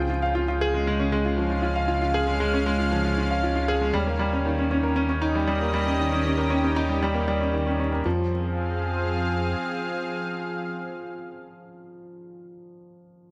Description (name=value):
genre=piano and strings electronica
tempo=117 BPM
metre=4/4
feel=straight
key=F minor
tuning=A4 = 442 Hz
part: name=lush unison pad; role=sustained chords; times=0.0-12.5 s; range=Db3 to G5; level=-32 LUFS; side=equal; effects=chorus
part: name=warm concert grand piano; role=riff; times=0.0-13.3 s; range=Eb3 to F5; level=-28 LUFS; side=equal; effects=digital delay
part: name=round analog bass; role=bass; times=0.0-9.6 s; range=Db2 to F2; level=-30 LUFS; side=equal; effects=none
room=moderate recital hall reverb, RT60 1.5 s, small room ambience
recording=none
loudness=-25 LUFS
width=mono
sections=0.0-8.1 A section; 8.1-12.2 B section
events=drop 0.0-8.1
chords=0.0 Db; 3.9 Eb7; 8.1 Fm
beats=0.36 0.87 1.39 | 1.90 2.41 2.92 3.44 | 3.95 4.46 4.97 5.49 | 6.00 6.51 7.03 7.54 | 8.05 8.56 9.08 9.59 | 10.10 10.62 11.13 11.64